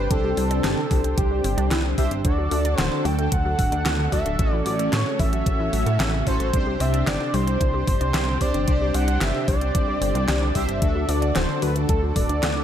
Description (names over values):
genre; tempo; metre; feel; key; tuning
synthwave; 112 BPM; 4/4; straight; unclear; A4 = 440 Hz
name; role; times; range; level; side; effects
wide unison lead; melody; 0.0-12.6 s; E4 to G5; -27 LUFS; equal; digital delay
analog string pad; sustained chords; 0.0-12.6 s; C3 to A4; -30 LUFS; left 1 dB; ensemble chorus, sidechain pumping
analog pluck; arpeggios; 0.0-12.6 s; C#3 to G4; -32 LUFS; left 3 dB; chorus, digital delay
analog synth brass; stabs; 0.0-12.6 s; C#4 to C5; -30 LUFS; right 2 dB; chorus
chorused synth bass; bass; 0.0-12.6 s; D1 to A2; -24 LUFS; equal; sidechain pumping
electronic kick drum; drums; 0.1-12.3 s; none; -24 LUFS; equal; overdrive
pop drum kit; drums; 0.1-12.5 s; handclaps, hi-hat, snare drum; -28 LUFS; equal; overdrive, gated reverb
room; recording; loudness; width
light reverb, digital ambience; none; -20 LUFS; side -10 dB against mid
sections
0.0-12.6 A section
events
none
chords
0.0 Csus2; 2.2 D; 4.4 A6; 6.5 Csus2; 10.8 D